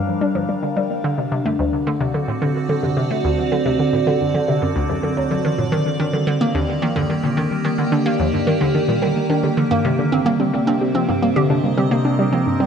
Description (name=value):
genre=ambient, sequencer-driven space music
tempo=109 BPM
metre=4/4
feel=straight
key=unclear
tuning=A4 = 438 Hz
part: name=evolving wavetable pad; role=sustained chords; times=0.0-12.7 s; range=C3 to F5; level=-21 LUFS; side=equal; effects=phaser, built-in reverb
part: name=hollow square pluck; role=riff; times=0.0-12.7 s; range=D2 to G4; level=-20 LUFS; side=right 1 dB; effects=chorus, analog delay
part: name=warbly dusty pluck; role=arpeggios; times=0.1-12.7 s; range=F#2 to G4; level=-25 LUFS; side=left 1 dB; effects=chorus, auto-pan, analog delay
room=moderate plate reverb, RT60 2.6 s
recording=none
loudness=-17 LUFS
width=side -7 dB against mid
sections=0.0-12.7 A section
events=fade-in on synth arpeggio sound 0.0-12.7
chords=0.0 Gm7; 1.0 D7; 5.4 Ebmaj7; 9.8 Cm7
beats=0.49 | 1.04 1.59 2.14 2.69 | 3.24 3.79 4.34 4.89 | 5.45 6.00 6.55 7.10 | 7.65 8.20 8.75 9.30 | 9.85 10.40 10.95 11.50 | 12.05 12.60